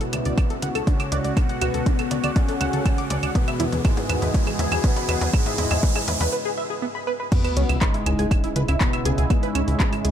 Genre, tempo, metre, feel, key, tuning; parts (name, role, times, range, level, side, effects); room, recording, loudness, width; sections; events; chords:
melodic techno; 121 BPM; 4/4; straight; C# phrygian; A4 = 441 Hz
analog synth brass; melody; 0.0-10.1 s; G#2 to C#4; -28 LUFS; left 1 dB; chorus, sidechain pumping, ping-pong delay
sweeping resonant pad; sustained chords; 0.0-10.1 s; C#3 to F#5; -31 LUFS; equal; chorus, sidechain pumping
tight sequenced synth; arpeggios; 0.0-10.1 s; B3 to E6; -29 LUFS; equal; chorus, sidechain pumping, tape echo
analog drone; drone; 0.0-6.3 s; C#3 to G#3; -38 LUFS; equal
deep house drum kit; drums; 0.0-10.1 s; claves, crash cymbal, handclaps, hi-hat, toms; -30 LUFS; right 1 dB; overdrive, high-pass filter on toms, high-pass filter on perc, high-pass filter on hats, high-pass filter on cymbals, high-pass filter on snare, high-pass filter on room
riser and sub drop; sound effects; 0.0-9.3 s; -32 LUFS; right 1 dB
plucky analog bass; bass; 0.1-10.1 s; C#2 to E2; -24 LUFS; equal; sidechain pumping
electronic kick drum; drums; 0.4-9.9 s; -20 LUFS; equal; overdrive
light reverb, digital ambience; -20 LUFS; side -9 dB against mid
0.0-7.3 A section; 7.3-10.1 B section
build-up 0.0-7.3; drum fill 0.0-6.3; riser 0.0-6.3; filter sweep on analog polysynth 0.0-7.3; break 6.3-7.3; drop 7.3-10.1; impact 7.3-9.3
0.0 D; 3.4 E; 7.3 C#m7